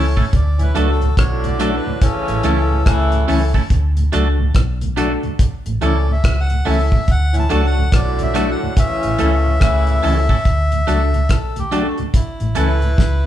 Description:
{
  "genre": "roots reggae",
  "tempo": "71 BPM",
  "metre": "4/4",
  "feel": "swing 62% on 16ths",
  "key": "D major",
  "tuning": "A4 = 440 Hz",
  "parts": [
    { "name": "melodica", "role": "melody", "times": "0.0-13.3 s", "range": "E4 to A5", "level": "-24 LUFS", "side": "left 1 dB", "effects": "none" },
    { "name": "mellow tonewheel organ", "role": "accompaniment", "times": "0.0-12.9 s", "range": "D2 to D4", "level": "-25 LUFS", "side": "equal", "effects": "slow rotary speaker" },
    { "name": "twangy electric guitar", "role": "accompaniment", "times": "0.0-12.7 s", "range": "A3 to A4", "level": "-25 LUFS", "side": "right 4 dB", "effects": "spring reverb" },
    { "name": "dark upright piano", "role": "stabs", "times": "0.0-12.8 s", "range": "C#4 to A4", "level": "-25 LUFS", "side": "left 4 dB", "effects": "none" },
    { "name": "vintage muted fingered electric bass", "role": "bass", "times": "0.0-13.3 s", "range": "A1 to D2", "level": "-17 LUFS", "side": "equal", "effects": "none" },
    { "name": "damped 70s drum kit", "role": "drums", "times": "0.2-13.2 s", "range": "hi-hat, kick drum, rim click, snare drum", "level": "-17 LUFS", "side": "equal", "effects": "none" },
    { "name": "mellow horn section", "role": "second line", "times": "0.6-10.3 s", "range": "A2 to F#4", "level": "-22 LUFS", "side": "equal", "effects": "none" }
  ],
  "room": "light reverb",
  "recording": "band playing live in one room",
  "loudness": "-14 LUFS",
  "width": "side -12 dB against mid",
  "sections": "0.0-13.3 A section",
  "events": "drum fill 13.0",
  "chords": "0.3 D; 2.0 A; 3.7 D; 5.4 A; 7.1 D; 8.8 A; 10.5 D; 12.1 A"
}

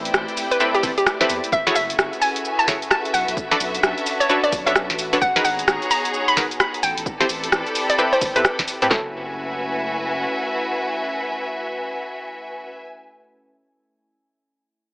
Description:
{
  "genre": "UK garage, two-step garage",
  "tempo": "130 BPM",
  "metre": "4/4",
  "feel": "swing 62% on 16ths",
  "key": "unclear",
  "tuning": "A4 = 440 Hz",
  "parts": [
    { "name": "airy breathy pad", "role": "sustained chords", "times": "0.0-12.7 s", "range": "A3 to A#5", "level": "-32 LUFS", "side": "equal", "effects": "chorus, sidechain pumping" },
    { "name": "saturated sub bass", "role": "bass", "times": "0.0-10.3 s", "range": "F#1 to A2", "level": "-38 LUFS", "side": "equal", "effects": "tube saturation" },
    { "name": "rich studio string section", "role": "texture", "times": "0.0-12.9 s", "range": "A3 to B5", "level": "-26 LUFS", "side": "equal", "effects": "sidechain pumping" },
    { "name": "punchy analog drum machine", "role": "drums", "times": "0.1-8.9 s", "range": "hi-hat, rim click, shaker, snare drum", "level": "-22 LUFS", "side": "equal", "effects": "none" },
    { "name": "hollow square pluck", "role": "melody", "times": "0.5-12.6 s", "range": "G4 to B5", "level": "-22 LUFS", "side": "equal", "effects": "chorus, tape echo" },
    { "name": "punchy chord stab", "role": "stabs", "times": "0.6-12.7 s", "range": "C4 to G#5", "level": "-22 LUFS", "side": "equal", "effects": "chorus, tape echo" },
    { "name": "punchy analog drum machine", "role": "drums", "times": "0.8-9.0 s", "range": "handclaps, kick drum, snare drum", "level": "-26 LUFS", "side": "equal", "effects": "none" }
  ],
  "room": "moderate digital room reverb, RT60 1.2 s",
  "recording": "AM radio sound",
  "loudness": "-18 LUFS",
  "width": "side -27 dB against mid",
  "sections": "0.0-8.9 A section; 8.9-12.6 B section",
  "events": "drop 0.0-8.9",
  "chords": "0.0 Am9; 1.5 F#m9; 3.1 Bm9; 5.2 G#m9; 6.8 Am9; 8.9 F#m9"
}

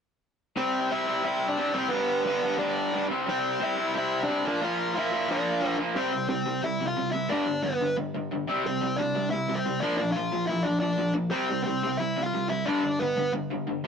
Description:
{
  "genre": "punk",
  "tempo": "178 BPM",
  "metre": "4/4",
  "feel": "straight",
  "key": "C major",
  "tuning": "A4 = 437 Hz",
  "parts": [
    { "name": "dark smooth lead guitar", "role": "melody", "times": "0.6-13.3 s", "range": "B3 to F5", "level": "-28 LUFS", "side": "equal", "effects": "overdrive" },
    { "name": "raw garage guitar", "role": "riff", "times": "0.6-13.9 s", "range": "G2 to C4", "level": "-28 LUFS", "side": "equal", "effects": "overdrive" }
  ],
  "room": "light reverb",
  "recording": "rough rehearsal-room recording",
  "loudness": "-25 LUFS",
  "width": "side -6 dB against mid",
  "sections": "0.6-6.0 A section; 6.0-13.9 B section",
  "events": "none",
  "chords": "0.6 C; 1.9 G; 3.1 C; 4.4 Bb; 6.0 C; 7.3 G; 8.5 C; 9.8 Bb; 11.3 C; 12.7 G"
}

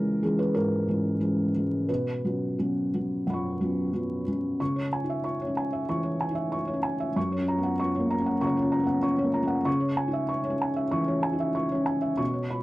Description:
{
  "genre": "neoclassical minimalist piano",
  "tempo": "86-97 BPM",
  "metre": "4/4",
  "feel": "rubato",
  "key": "C# dorian",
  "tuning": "A4 = 440 Hz",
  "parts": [
    { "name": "felt-muted upright piano", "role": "solo", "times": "0.0-12.6 s", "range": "F#2 to C#6", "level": "-25 LUFS", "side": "equal", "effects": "none" }
  ],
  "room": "light reverb",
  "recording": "dry, close 1970s-style studio recording, vinyl crackle",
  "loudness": "-25 LUFS",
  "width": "side -18 dB against mid",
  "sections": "0.0-4.6 A section; 4.6-12.6 B section",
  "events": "none",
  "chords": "0.0 C#m; 1.9 Bsus2; 4.6 C#m; 7.2 F#; 9.7 C#m"
}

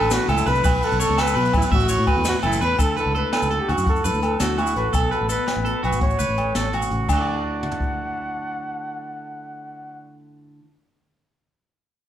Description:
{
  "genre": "highlife guitar band",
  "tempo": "112 BPM (dotted quarters)",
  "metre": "12/8",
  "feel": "straight",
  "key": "D major",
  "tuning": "A4 = 441 Hz",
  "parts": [
    { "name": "breathy trumpet", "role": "melody", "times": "0.0-10.1 s", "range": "E4 to F#5", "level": "-26 LUFS", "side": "left 1 dB", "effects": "none" },
    { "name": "electric guitar at the edge of break-up", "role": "accompaniment", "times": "0.0-10.7 s", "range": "A2 to A5", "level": "-31 LUFS", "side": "left 2 dB", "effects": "none" },
    { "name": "electric guitar at the edge of break-up", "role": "arpeggios", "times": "0.0-10.2 s", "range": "D4 to E5", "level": "-25 LUFS", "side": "right 3 dB", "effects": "none" },
    { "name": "fingered electric bass", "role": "bass", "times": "0.0-10.1 s", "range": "F#1 to B2", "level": "-25 LUFS", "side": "equal", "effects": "none" },
    { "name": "jazz brush drum kit", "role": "drums", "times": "0.1-7.9 s", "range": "crash cymbal, hi-hat, kick drum, ride cymbal, snare drum, toms", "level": "-25 LUFS", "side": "equal", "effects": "none" },
    { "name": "maracas", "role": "percussion", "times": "0.1-7.3 s", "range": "none", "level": "-35 LUFS", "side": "left 7 dB", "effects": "none" },
    { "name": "agogo bells", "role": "percussion", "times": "0.3-7.2 s", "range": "none", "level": "-28 LUFS", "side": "right 1 dB", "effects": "none" }
  ],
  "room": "moderate large studio reverb, RT60 1.2 s",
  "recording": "band playing live in one room",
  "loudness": "-19 LUFS",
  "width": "side -11 dB against mid",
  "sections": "0.0-2.8 A section; 2.8-7.1 B section; 7.1-11.4 C section",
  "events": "none",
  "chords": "0.0 Dadd9; 0.6 Bsus2; 1.7 A6; 2.8 Dadd9; 4.9 B5; 6.0 A6; 7.1 Dadd9"
}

